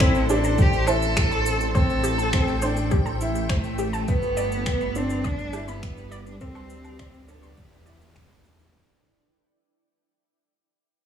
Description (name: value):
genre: piano and strings electronica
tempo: 103 BPM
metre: 4/4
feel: straight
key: A minor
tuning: A4 = 441 Hz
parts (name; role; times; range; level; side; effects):
- rich cello; melody; 0.0-8.4 s; A3 to A4; -29 LUFS; right 1 dB; digital delay
- granular cloud pad; sustained chords; 0.0-8.7 s; G3 to G5; -32 LUFS; right 2 dB; built-in reverb
- warbly dusty pluck; arpeggios; 0.0-8.3 s; G4 to C6; -32 LUFS; equal; chorus, sidechain pumping, digital delay
- bright upright piano; riff; 0.0-8.2 s; B3 to E4; -28 LUFS; left 2 dB; digital delay
- dark detuned saw bass; bass; 0.0-8.7 s; G1 to E2; -29 LUFS; equal; sidechain pumping
- electronic finger snaps, shaker and woodblock; drums; 0.0-8.7 s; none; -32 LUFS; left 1 dB; none
- electronic kick drum; drums; 0.0-8.3 s; none; -23 LUFS; equal; none
room: light reverb, digital ambience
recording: small room ambience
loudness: -20 LUFS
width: side -8 dB against mid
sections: 0.0-8.7 A section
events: drop 0.0-8.7; fade-out 0.0-8.7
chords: 0.0 Am7; 4.1 G; 6.4 D5; 7.6 Em7